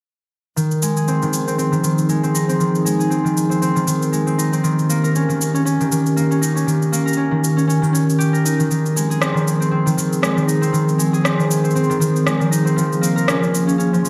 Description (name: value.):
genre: folktronica.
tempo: 118 BPM.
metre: 4/4.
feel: swing 56% on 16ths.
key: F minor.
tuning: A4 = 440 Hz.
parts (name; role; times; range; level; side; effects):
warbly tape-like pad; sustained chords; 1.1-14.1 s; Db3 to Ab4; -24 LUFS; equal; chorus, built-in reverb.
concert harp; arpeggios; 0.6-14.1 s; Eb3 to Bb4; -19 LUFS; equal; low-pass filter, tape echo.
electronic cabasa and rim click; drums; 0.6-14.1 s; none; -27 LUFS; equal; overdrive.
room: moderate lush hall reverb, RT60 2.0 s, digital ambience.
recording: none.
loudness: -18 LUFS.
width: mono.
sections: 0.6-14.1 A section.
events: none.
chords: 0.6 Fm7; 4.6 Eb7; 8.7 Ab6; 12.8 Bbm7.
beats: | 0.57 1.07 1.58 2.09 | 2.60 3.11 3.62 4.13 | 4.63 5.14 5.65 6.16 | 6.67 7.18 7.68 8.19 | 8.70 9.21 9.72 10.23 | 10.74 11.24 11.75 12.26 | 12.77 13.28 13.79.